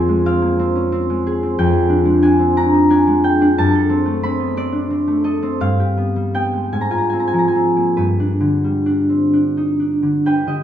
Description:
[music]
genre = classical, solo harp piece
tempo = 42-62 BPM (dotted quarters)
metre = 6/8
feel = rubato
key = unclear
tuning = A4 = 441 Hz
[part]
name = concert harp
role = solo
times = 0.0-10.6 s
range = F2 to B5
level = -14 LUFS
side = equal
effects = none
[sound]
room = wet recital hall reverb, RT60 1.3 s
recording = minimal, uncompressed stereo recording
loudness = -14 LUFS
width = side -10 dB against mid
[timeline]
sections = 0.0-10.6 A section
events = none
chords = 0.0 Fm; 1.6 Ddim/F; 3.6 F#dim; 5.6 G; 6.7 Fm/Ab; 8.0 G

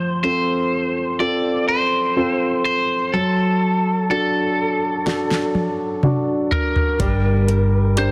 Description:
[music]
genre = pop ballad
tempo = 62 BPM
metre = 4/4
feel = straight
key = unclear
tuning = A4 = 441 Hz
[part]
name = lightly driven lead guitar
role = melody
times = 0.0-8.1 s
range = A4 to D5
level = -24 LUFS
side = equal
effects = delay
[part]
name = clear baby grand piano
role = accompaniment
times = 0.0-8.1 s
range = F3 to Bb4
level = -23 LUFS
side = equal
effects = none
[part]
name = smooth R&B drum kit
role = drums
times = 5.1-8.1 s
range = hi-hat, kick drum, snare drum, toms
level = -23 LUFS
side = equal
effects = none
[part]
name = nylon-string guitar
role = arpeggios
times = 7.0-8.1 s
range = G3 to Bb4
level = -30 LUFS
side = equal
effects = delay
[part]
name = hollow-body short-scale fingered electric bass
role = bass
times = 7.0-8.1 s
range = G1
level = -20 LUFS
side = equal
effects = none
[sound]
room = light reverb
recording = dense, heavily limited modern master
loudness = -19 LUFS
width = mono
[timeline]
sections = 0.0-8.1 A section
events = drum fill 5.1-7.0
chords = 0.0 F; 3.1 D/F#; 7.0 Gm

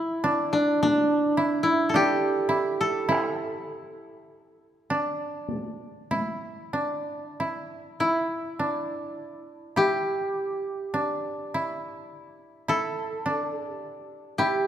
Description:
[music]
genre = japanese traditional, Japanese chamber music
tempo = 46-54 BPM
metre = 4/4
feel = rubato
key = unclear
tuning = A4 = 440 Hz
[part]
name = koto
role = melody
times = 0.0-14.7 s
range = D4 to A4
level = -25 LUFS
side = equal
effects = none
[part]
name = koto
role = second line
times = 0.0-14.7 s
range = D4 to E4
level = -29 LUFS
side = right 1 dB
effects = none
[part]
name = taiko ensemble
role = percussion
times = 0.8-6.4 s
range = none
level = -35 LUFS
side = left 2 dB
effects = none
[sound]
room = moderate concert hall reverb, RT60 2.4 s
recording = none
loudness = -24 LUFS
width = side -10 dB against mid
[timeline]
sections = 0.0-8.0 A section; 8.0-14.7 B section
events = none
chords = none

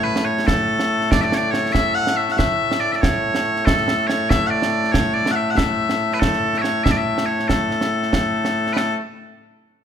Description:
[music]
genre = scottish traditional, Scottish pipe music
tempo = 94 BPM (dotted quarters)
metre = 6/8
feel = straight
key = A major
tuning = A4 = 440 Hz
[part]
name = loud bright bagpipes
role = melody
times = 0.0-9.0 s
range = A2 to F#5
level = -18 LUFS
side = left 1 dB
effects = none
[part]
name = concert snare drum and concert bass drum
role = drums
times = 0.2-9.0 s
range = none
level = -22 LUFS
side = right 1 dB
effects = none
[sound]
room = light reverb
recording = minimal, uncompressed stereo recording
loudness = -17 LUFS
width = side -8 dB against mid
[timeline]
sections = 0.0-8.8 A section; 8.8-9.8 B section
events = none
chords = none

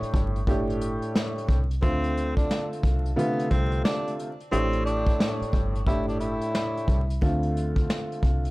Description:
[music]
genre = hip hop, boom-bap hip-hop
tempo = 89 BPM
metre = 4/4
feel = swing 62% on 16ths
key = D minor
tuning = A4 = 440 Hz
[part]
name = dark upright piano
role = accompaniment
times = 0.0-8.5 s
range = A2 to G4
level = -28 LUFS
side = equal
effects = high-pass filter, low-pass filter
[part]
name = deep dub fingered electric bass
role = bass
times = 0.0-8.5 s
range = G1 to D2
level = -27 LUFS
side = equal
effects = none
[part]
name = vintage brush drum kit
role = drums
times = 0.0-8.5 s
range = hi-hat, kick drum, snare drum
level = -26 LUFS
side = equal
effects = none
[part]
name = breathy tenor saxophone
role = melody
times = 1.8-7.2 s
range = B3 to E4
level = -31 LUFS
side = equal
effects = high-pass filter, low-pass filter, digital delay
[sound]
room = little or no reverb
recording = dark, warm production, vinyl crackle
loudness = -23 LUFS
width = side -21 dB against mid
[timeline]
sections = 0.0-8.5 A section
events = none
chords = 0.0 A7sus4; 1.8 Dm7; 4.5 A7sus4; 7.2 Dm7

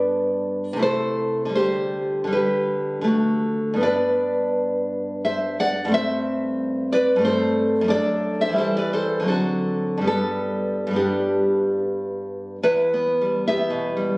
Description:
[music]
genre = romantic piece for solo classical guitar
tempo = 68-93 BPM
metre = 3/4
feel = rubato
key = G major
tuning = A4 = 440 Hz
[part]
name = nylon-string guitar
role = solo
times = 0.0-14.2 s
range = E2 to F#5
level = -20 LUFS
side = equal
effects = slapback echo
[sound]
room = moderate recital hall reverb, RT60 1.5 s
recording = recorded on a phone in the room, studio reverb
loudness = -20 LUFS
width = side -24 dB against mid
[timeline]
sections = 0.0-12.6 A section; 12.6-14.2 B section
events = none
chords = 0.0 G; 0.8 Am/C; 1.6 G/D; 3.1 D; 3.8 G; 5.9 Am7/G; 7.9 D/F#; 8.6 C/E; 9.3 D7; 10.1 G; 12.6 Em

